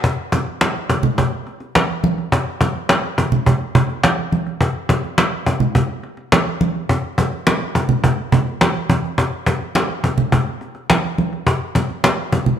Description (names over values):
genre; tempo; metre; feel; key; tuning
funk; 105 BPM; 4/4; straight; none; none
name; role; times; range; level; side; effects
cajon; drums; 0.0-12.5 s; none; -18 LUFS; left 1 dB; none
congas; percussion; 0.3-12.6 s; none; -19 LUFS; right 2 dB; none
room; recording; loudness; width
light reverb; none; -16 LUFS; side -9 dB against mid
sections
0.0-12.6 A section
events
none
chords
none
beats
| 0.04 0.61 1.18 1.75 | 2.32 2.89 3.47 4.04 | 4.61 5.18 5.75 6.32 | 6.89 7.47 8.04 8.61 | 9.18 9.75 10.32 10.89 | 11.47 12.04